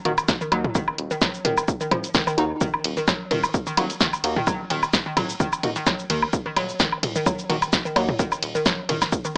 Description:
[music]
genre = minimal techno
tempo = 129 BPM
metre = 4/4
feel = swing 54% on 16ths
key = Eb minor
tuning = A4 = 438 Hz
[part]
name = hollow square pluck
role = riff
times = 0.1-9.3 s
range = Eb3 to Eb4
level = -29 LUFS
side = equal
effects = chorus, sidechain pumping, cassette tape, analog delay
[part]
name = percussive organ stab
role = stabs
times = 0.1-8.1 s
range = Bb3 to Gb4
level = -33 LUFS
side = equal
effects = none
[part]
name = rubbery square bass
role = bass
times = 0.1-9.0 s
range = Eb1 to Eb2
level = -34 LUFS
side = equal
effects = sidechain pumping
[part]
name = punchy analog drum machine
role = drums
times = 0.1-9.3 s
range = hi-hat, ride cymbal, shaker, snare drum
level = -27 LUFS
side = equal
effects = cassette tape
[part]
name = electronic woodblock and toms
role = percussion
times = 0.2-9.1 s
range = none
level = -28 LUFS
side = equal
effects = cassette tape, analog delay
[part]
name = electronic kick drum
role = drums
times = 0.3-9.2 s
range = none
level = -27 LUFS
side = equal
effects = cassette tape
[sound]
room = light reverb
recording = home recording on cassette, small speaker sound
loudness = -23 LUFS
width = mono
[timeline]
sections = 0.0-9.4 A section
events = none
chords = 0.0 Ebm

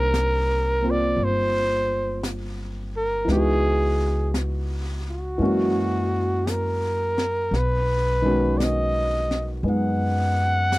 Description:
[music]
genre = jazz ballad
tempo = 57 BPM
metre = 4/4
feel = swing 67% on 8ths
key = unclear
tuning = A4 = 441 Hz
[part]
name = breathy trumpet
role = melody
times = 0.0-10.8 s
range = Gb4 to F#5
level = -24 LUFS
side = equal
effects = none
[part]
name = warm concert grand piano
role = accompaniment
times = 0.0-10.8 s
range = Eb3 to G4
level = -26 LUFS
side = equal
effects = none
[part]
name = upright bass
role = bass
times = 0.0-10.8 s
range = G1 to Gb2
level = -25 LUFS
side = equal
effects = none
[part]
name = jazz brush drum kit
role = drums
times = 0.1-10.8 s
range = brushed snare drum, hi-hat, snare drum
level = -34 LUFS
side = left 1 dB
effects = none
[sound]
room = light reverb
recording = dry, close 1970s-style studio recording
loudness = -20 LUFS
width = side -19 dB against mid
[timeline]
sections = 0.0-10.8 A section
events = none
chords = 0.0 Cm9; 3.3 Dbm11; 5.4 Gb7; 7.5 B6

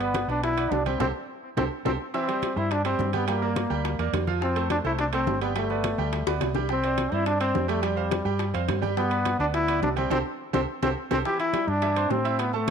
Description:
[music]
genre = latin, salsa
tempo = 211 BPM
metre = 4/4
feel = straight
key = C major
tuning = A4 = 442 Hz
[part]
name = bright trombone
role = melody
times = 0.0-12.7 s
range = G3 to G4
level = -27 LUFS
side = left 1 dB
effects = tape echo
[part]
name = bright grand piano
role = accompaniment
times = 0.0-12.7 s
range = E3 to E6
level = -30 LUFS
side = right 10 dB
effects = none
[part]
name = hollow-body short-scale fingered electric bass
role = bass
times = 0.0-12.7 s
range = G1 to A2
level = -30 LUFS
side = left 1 dB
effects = none
[part]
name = congas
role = percussion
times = 0.0-12.7 s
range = none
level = -36 LUFS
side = left 2 dB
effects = none
[part]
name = timbales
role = percussion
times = 0.0-12.7 s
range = none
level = -35 LUFS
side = right 13 dB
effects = none
[part]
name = bongos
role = percussion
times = 0.2-12.7 s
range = none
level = -34 LUFS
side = left 13 dB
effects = none
[sound]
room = moderate echo chamber reverb, RT60 1.3 s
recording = 1960s-style stereo with parts hard left and right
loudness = -23 LUFS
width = side -7 dB against mid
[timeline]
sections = 0.0-2.1 A section; 2.1-11.3 A section; 11.3-12.7 B section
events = drum fill 1.0-2.1, 6.3-6.7, 10.4-11.3; band accent 1.0-2.1, 10.1-11.3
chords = 0.0 G6; 1.0 C5; 2.1 C; 3.3 Gm; 4.4 F; 5.6 G; 6.7 Csus2; 7.8 Fsus2; 9.0 G6; 10.1 C5; 11.3 C

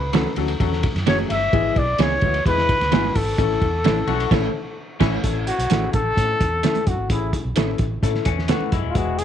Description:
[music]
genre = uptempo 1960s-style soul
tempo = 129 BPM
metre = 4/4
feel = straight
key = A major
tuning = A4 = 440 Hz
[part]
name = breathy trumpet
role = melody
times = 0.0-9.2 s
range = E4 to E5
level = -22 LUFS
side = left 1 dB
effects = none
[part]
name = vintage muted fingered electric bass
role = bass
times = 0.0-9.2 s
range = D#1 to A2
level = -25 LUFS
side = right 1 dB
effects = none
[part]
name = clear upright piano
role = accompaniment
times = 0.1-9.2 s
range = E3 to B4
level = -27 LUFS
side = left 14 dB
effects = none
[part]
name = electric guitar through a small old amp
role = stabs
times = 0.1-8.6 s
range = G#3 to A4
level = -26 LUFS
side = right 17 dB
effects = tremolo
[part]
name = cloth-damped thuddy drum kit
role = drums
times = 0.1-9.2 s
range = crash cymbal, hi-hat, kick drum, ride cymbal, snare drum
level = -23 LUFS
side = right 1 dB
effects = none
[part]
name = congas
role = percussion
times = 0.1-9.1 s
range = none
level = -35 LUFS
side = right 15 dB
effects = none
[part]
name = electric guitar through a small old amp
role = riff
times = 4.1-5.2, 8.3-9.2 s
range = E3 to F#4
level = -28 LUFS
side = left 13 dB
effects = lush chorus
[sound]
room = studio reverb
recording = 1960s-style stereo with parts hard left and right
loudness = -18 LUFS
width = side -10 dB against mid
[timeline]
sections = 0.0-5.2 A section; 5.2-9.2 B section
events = band accent 4.3-5.2; trumpet solo 5.2-9.2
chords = 0.0 F#m; 1.5 E/G#; 3.4 A

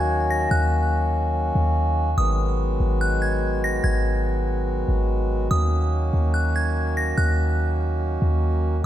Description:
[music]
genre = hip hop, atmospheric cloud-rap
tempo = 144 BPM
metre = 4/4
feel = half-time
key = Eb minor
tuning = A4 = 440 Hz
[part]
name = delicate synth tine bell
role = melody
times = 0.0-8.0 s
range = Eb6 to Bb6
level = -28 LUFS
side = right 1 dB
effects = chorus, digital delay
[part]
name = mellow accordion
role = sustained chords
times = 0.0-8.9 s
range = Eb3 to Gb4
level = -25 LUFS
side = equal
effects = none
[part]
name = clean 808-style bass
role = bass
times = 0.0-8.8 s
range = Ab1 to Eb2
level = -22 LUFS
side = equal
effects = none
[sound]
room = moderate scoring stage reverb, RT60 1.6 s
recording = none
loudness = -20 LUFS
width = side -12 dB against mid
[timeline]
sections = 0.0-8.9 A section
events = none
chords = 0.0 Ebm7; 2.2 Abm7; 5.5 Ebm7

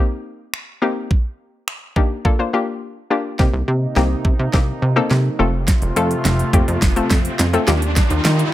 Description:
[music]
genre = dance-pop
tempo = 105 BPM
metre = 4/4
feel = straight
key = C dorian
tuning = A4 = 440 Hz
[part]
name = hollow square pluck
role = accompaniment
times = 0.0-8.4 s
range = A3 to C5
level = -20 LUFS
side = left 3 dB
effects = chorus, sidechain pumping
[part]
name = pop drum kit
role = drums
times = 0.5-8.5 s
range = finger snaps, hi-hat, kick drum, snare drum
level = -18 LUFS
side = right 1 dB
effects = none
[part]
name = chorused pulse-width pad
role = sustained chords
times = 3.4-8.5 s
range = C3 to F4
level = -26 LUFS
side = equal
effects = sidechain pumping
[part]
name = plucky analog bass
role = bass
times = 3.4-8.4 s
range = F1 to Eb3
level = -18 LUFS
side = right 1 dB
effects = sidechain pumping
[part]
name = riser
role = sound effects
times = 5.3-8.5 s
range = none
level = -27 LUFS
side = equal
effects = none
[sound]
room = digital ambience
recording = none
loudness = -16 LUFS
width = side -14 dB against mid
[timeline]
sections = 0.0-3.4 A section; 3.4-8.5 B section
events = break 2.8-3.4; build-up 3.4-8.5; drum fill 3.4-8.5; riser 5.3-8.5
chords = 0.0 Cm7; 1.1 Ebmaj7; 2.2 Bbmaj7; 3.4 Cm7; 5.4 F; 7.7 Ebadd9

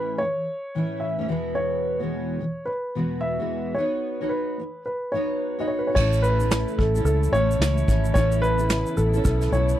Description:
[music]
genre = acoustic pop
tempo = 109 BPM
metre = 4/4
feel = swing 60% on 16ths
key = unclear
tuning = A4 = 439 Hz
[part]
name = dark upright piano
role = melody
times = 0.0-9.8 s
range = A4 to E5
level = -26 LUFS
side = equal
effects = none
[part]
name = fingerpicked steel-string acoustic guitar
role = accompaniment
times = 0.0-9.8 s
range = E2 to C#5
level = -28 LUFS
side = equal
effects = double-tracked left and right
[part]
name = dark studio string section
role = sustained chords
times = 6.0-9.8 s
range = C#3 to E4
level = -33 LUFS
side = left 2 dB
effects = none
[part]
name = vintage muted fingered electric bass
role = bass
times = 6.0-9.7 s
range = G#1 to C#2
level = -22 LUFS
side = equal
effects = none
[part]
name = soft brush drum kit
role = drums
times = 6.0-9.8 s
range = crash cymbal, kick drum, shaker, snare drum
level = -24 LUFS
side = equal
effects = none
[sound]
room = little or no reverb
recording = dry, close 1970s-style studio recording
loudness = -21 LUFS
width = side -12 dB against mid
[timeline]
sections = 0.0-6.0 A section; 6.0-9.8 B section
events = none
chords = 0.0 A; 1.3 Eadd9; 3.8 Badd9; 6.0 A

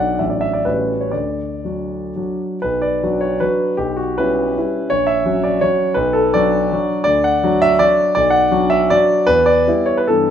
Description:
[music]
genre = classical, romantic triple-time dance for piano with dotted rhythms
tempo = 111-180 BPM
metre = 3/4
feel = rubato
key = B minor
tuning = A4 = 440 Hz
[part]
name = warm concert grand piano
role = solo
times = 0.0-10.3 s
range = A1 to F#5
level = -14 LUFS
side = equal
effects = none
[sound]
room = moderate recital hall reverb, RT60 1.3 s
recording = minimal, uncompressed stereo recording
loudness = -14 LUFS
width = side -9 dB against mid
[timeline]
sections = 0.0-2.6 A section; 2.6-10.3 B section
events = none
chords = 0.2 D/A; 0.7 A13; 1.1 D; 2.6 Bm; 3.8 C#m7b5/B; 4.9 F#7/A#; 6.0 Bm; 7.1 D; 8.1 Bm; 9.3 Em

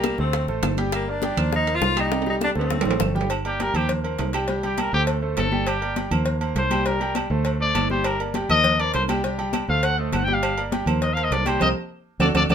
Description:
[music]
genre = latin, salsa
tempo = 202 BPM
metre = 4/4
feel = straight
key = G minor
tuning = A4 = 441 Hz
[part]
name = clear tenor saxophone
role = melody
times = 0.0-3.1 s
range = Bb3 to F4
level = -25 LUFS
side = left 1 dB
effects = none
[part]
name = bright concert grand piano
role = accompaniment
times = 0.0-12.5 s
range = G3 to G5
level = -28 LUFS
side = right 1 dB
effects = none
[part]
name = fingered electric bass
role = bass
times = 0.0-12.5 s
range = G1 to Eb2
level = -26 LUFS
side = equal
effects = none
[part]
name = bongos and cowbell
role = percussion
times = 0.0-12.5 s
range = none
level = -30 LUFS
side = left 4 dB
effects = none
[part]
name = claves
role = percussion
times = 0.0-12.5 s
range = none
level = -33 LUFS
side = right 6 dB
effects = none
[part]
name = congas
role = percussion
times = 0.0-12.5 s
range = none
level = -29 LUFS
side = left 1 dB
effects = none
[part]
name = timbales and agogo bells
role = percussion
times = 0.0-12.5 s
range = none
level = -29 LUFS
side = right 7 dB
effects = none
[part]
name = bright trumpet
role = melody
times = 3.5-12.5 s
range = G4 to G5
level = -23 LUFS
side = left 2 dB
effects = none
[sound]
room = moderate studio reverb, RT60 0.6 s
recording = minimal, uncompressed stereo recording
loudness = -20 LUFS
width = side -8 dB against mid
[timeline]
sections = 0.0-3.3 A section; 3.3-12.5 B section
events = drum fill 2.1-3.3, 11.9-12.5; trumpet solo 3.3-12.5; band accent 11.6-12.5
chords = 0.3 D5; 0.9 Gm; 1.5 Eb6; 2.1 C5; 2.7 D5; 3.3 Gm; 3.9 Eb6; 4.5 C5; 5.1 D5; 5.7 Gm; 6.3 Eb6; 6.9 C5; 7.5 D5; 8.0 Gm; 8.6 Eb6; 9.2 C5; 9.8 D5; 10.4 Gm; 11.0 Cm7

